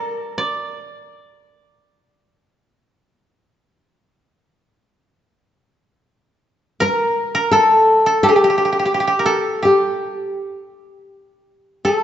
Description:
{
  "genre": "japanese traditional, Japanese chamber music",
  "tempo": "85 BPM",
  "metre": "4/4",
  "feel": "uneven beats, rubato",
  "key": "G minor",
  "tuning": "A4 = 440 Hz",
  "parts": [
    { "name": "nylon-string guitar", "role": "melody", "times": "0.0-0.7, 6.8-12.0 s", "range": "G4 to Bb4", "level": "-16 LUFS", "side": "left 1 dB", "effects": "none" },
    { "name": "koto", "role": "second line", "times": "0.0-2.0, 6.8-12.0 s", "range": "G4 to D5", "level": "-19 LUFS", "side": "right 1 dB", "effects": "none" }
  ],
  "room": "moderate scoring stage reverb, RT60 1.9 s",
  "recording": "nothing above 7.7 kHz",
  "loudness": "-14 LUFS",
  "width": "side -11 dB against mid",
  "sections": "0.0-12.0 A section",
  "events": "none",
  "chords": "none",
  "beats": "0.38 | 1.14 1.88 2.61 3.33 | 4.04 4.73 5.43 6.12 | 6.81 7.51 8.22 8.93 | 9.64 10.37 11.10 11.86"
}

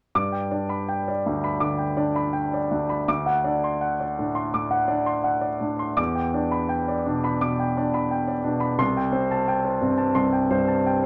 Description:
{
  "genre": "classical, romantic character piece for solo piano",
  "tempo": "83 BPM",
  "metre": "4/4",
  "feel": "uneven beats, rubato",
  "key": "G major",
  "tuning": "A4 = 441 Hz",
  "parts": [
    { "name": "warm concert grand piano", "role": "solo", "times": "0.1-11.1 s", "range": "C2 to D6", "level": "-24 LUFS", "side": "equal", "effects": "none" }
  ],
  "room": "moderate large studio reverb, RT60 0.9 s",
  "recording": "none",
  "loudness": "-24 LUFS",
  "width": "mono",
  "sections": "0.1-11.1 A section",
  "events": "none",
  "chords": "0.1 G; 3.1 D7; 6.0 Em7; 8.8 Am7/C",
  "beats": "| 0.15 0.89 1.62 2.35 | 3.08 3.82 4.54 5.25 | 5.98 6.70 7.43 8.12 | 8.80 9.48 10.16 10.86"
}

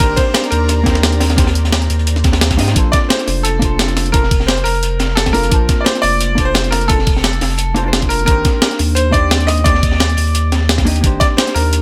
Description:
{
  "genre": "liquid drum and bass",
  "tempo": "174 BPM",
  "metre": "4/4",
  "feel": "straight",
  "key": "Bb major",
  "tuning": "A4 = 439 Hz",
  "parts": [
    { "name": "bright concert grand piano", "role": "melody", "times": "0.0-11.8 s", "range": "A4 to Eb5", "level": "-21 LUFS", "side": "equal", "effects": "tape echo" },
    { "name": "hollow-body jazz guitar", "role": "accompaniment", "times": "0.0-11.8 s", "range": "Bb3 to A5", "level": "-24 LUFS", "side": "equal", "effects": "none" },
    { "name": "lush unison pad", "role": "sustained chords", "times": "0.0-2.7 s", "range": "C5 to Bb5", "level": "-32 LUFS", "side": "equal", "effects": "chorus, phaser, sidechain pumping" },
    { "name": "saturated sub bass", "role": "bass", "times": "0.0-11.8 s", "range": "F1 to Ab2", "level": "-19 LUFS", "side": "equal", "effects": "none" },
    { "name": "breakbeat sampler-style drum kit", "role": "drums", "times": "0.0-11.8 s", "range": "hi-hat, snare drum", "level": "-20 LUFS", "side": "equal", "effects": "none" },
    { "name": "crunchy breakbeat drum kit", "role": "drums", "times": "0.0-11.8 s", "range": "hi-hat, snare drum", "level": "-25 LUFS", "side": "equal", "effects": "high-pass filter on hats, high-pass filter on snare, high-pass filter on room" },
    { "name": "electronic kick drum", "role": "drums", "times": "0.0-11.3 s", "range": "none", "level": "-17 LUFS", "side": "equal", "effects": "none" }
  ],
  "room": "small room ambience",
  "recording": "none",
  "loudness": "-14 LUFS",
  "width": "mono",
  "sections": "0.0-2.8 A section; 2.8-11.8 A section",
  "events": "drop 0.0-2.8, 2.8-11.8",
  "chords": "0.0 Abmaj9#11 (rootless); 2.8 Bbmaj9; 8.3 Abmaj9#11 (rootless)",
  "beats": "| 0.00 0.35 0.69 1.04 | 1.38 1.73 2.07 2.42 | 2.76 3.11 3.45 3.79 | 4.14 4.49 4.83 5.17 | 5.52 5.86 6.21 6.55 | 6.90 7.24 7.59 7.93 | 8.28 8.62 8.97 9.31 | 9.66 10.00 10.35 10.69 | 11.04 11.38 11.73"
}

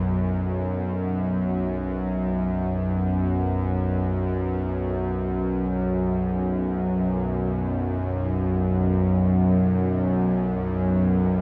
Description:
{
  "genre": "ambient",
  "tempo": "free time",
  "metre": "none",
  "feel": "none",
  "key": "unclear",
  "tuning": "A4 = 438 Hz",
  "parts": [
    { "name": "bowed-like drone", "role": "solo", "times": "0.0-11.4 s", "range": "B1 to F#2", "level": "-24 LUFS", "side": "equal", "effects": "built-in reverb, dub echo" }
  ],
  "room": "moderate plate reverb, RT60 2.9 s",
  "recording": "echo-heavy mix, cassette tape",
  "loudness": "-24 LUFS",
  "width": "mono",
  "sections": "0.1-11.4 A section",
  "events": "none",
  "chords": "0.1 B5",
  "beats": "free time"
}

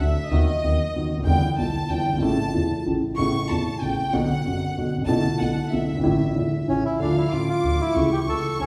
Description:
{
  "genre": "tango",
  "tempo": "189 BPM",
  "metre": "3/4",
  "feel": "rubato",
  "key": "unclear",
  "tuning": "A4 = 439 Hz",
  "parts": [
    { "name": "clear studio violin section", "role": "second line", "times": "0.0-8.7 s", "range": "D#5 to D6", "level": "-32 LUFS", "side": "equal", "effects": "none" },
    { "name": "dark concert grand piano", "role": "accompaniment", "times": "0.0-8.7 s", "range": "E1 to F#4", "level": "-25 LUFS", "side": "equal", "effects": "none" },
    { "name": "upright bass", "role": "bass", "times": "0.0-8.7 s", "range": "E1 to E2", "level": "-30 LUFS", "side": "equal", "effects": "none" },
    { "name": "bandoneon", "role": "melody", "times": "6.7-8.7 s", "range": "C#4 to A4", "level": "-26 LUFS", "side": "equal", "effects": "none" }
  ],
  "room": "wet large studio reverb, RT60 1.4 s",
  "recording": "heard from further back in the room, small room ambience",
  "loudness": "-23 LUFS",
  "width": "mono",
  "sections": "0.0-7.0 A section; 7.0-8.7 B section",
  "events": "violin section solo 0.0-7.0",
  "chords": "0.3 B/D#; 1.3 Em7; 2.2 A; 3.2 Aadd9; 4.1 Bm; 5.1 E7sus4/B; 6.0 Asus4; 6.7 A; 7.0 Dm; 8.0 A/C#",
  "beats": "| 0.31 0.63 0.95 | 1.26 1.58 1.90 | 2.21 2.53 2.86 | 3.18 3.50 3.82 | 4.13 4.45 4.77 | 5.08 5.40 5.72 | 6.04 6.36 6.68 | 7.00 7.33 7.64 | 7.96 8.28 8.59"
}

